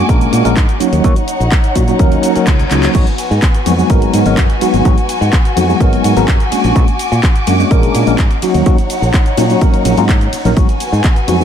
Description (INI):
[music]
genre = filtered disco house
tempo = 126 BPM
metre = 4/4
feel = straight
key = G# minor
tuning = A4 = 439 Hz
[part]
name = tine electric piano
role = accompaniment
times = 0.0-11.4 s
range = F#3 to A#4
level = -15 LUFS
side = equal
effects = medium stereo tremolo, phaser, vintage 12-bit sampler grit, sidechain pumping
[part]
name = warm studio violin section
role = sustained chords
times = 0.0-11.4 s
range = B3 to D6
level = -19 LUFS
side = left 2 dB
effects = sidechain pumping
[part]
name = fingered electric bass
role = bass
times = 0.1-11.4 s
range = G#1 to A#2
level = -15 LUFS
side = equal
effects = sidechain pumping
[part]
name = electronic kick drum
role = drums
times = 0.1-11.1 s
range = none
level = -12 LUFS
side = equal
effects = none
[part]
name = house drum kit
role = drums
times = 0.1-11.4 s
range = cabasa, crash cymbal, handclaps, hi-hat, ride cymbal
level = -23 LUFS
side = equal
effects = sidechain pumping on hats, sidechain pumping on perc, sidechain pumping on cymbals
[part]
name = reverse cymbal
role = sound effects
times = 2.2-2.9 s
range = none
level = -27 LUFS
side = left 5 dB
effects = none
[sound]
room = light reverb, digital ambience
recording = none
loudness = -10 LUFS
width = side -9 dB against mid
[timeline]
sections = 0.0-11.4 A section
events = reverse cymbal 2.2-2.9; drum fill 2.7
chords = 0.0 A#7alt; 0.8 D#m7; 2.9 G#m7; 6.5 A#7alt; 8.4 D#m7; 10.6 G#m7